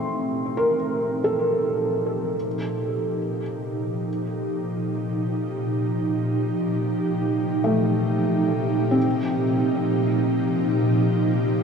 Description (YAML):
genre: ambient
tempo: free time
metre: none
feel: none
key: C dorian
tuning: A4 = 440 Hz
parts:
  - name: ethereal airy pad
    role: sustained chords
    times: 0.0-11.6 s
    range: Bb2 to G4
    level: -23 LUFS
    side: equal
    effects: ensemble chorus, built-in reverb
  - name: felt-muted upright piano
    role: arpeggios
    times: 0.0-11.6 s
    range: A3 to C6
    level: -25 LUFS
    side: equal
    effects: tape echo
room: wet cathedral reverb, RT60 5.9 s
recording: cassette tape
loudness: -21 LUFS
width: side -6 dB against mid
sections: 0.0-11.6 A section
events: fade-in on ambient pad 0.0-11.6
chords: 0.0 Cm